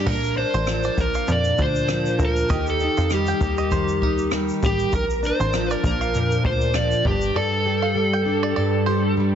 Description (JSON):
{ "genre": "acoustic pop", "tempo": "99 BPM", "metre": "4/4", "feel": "swing 55% on 16ths", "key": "Bb major", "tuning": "A4 = 441 Hz", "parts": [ { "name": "overdriven slide guitar", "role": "melody", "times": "0.0-9.1 s", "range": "G4 to D5", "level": "-24 LUFS", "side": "equal", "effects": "tape echo" }, { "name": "fingerpicked plugged-in steel-string acoustic guitar", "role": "accompaniment", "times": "0.0-9.3 s", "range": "G2 to Bb4", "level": "-23 LUFS", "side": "equal", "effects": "double-tracked left and right" }, { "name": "bluegrass banjo", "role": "arpeggios", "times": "0.1-9.0 s", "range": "Bb4 to G5", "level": "-31 LUFS", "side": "right 5 dB", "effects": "none" }, { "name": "plucky analog bass", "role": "bass", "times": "0.1-7.3 s", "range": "G1 to F2", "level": "-25 LUFS", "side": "equal", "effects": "none" }, { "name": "jazz brush drum kit", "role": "drums", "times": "0.1-7.3 s", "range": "crash cymbal, kick drum, rim click, shaker", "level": "-28 LUFS", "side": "equal", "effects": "none" } ], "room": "light reverb", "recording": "heavily compressed radio sound, nothing above 7.7 kHz", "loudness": "-19 LUFS", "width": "side -9 dB against mid", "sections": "0.1-9.3 A section", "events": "none", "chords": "0.1 Bb; 2.5 Eb; 4.9 Bb; 7.1 Gsus2" }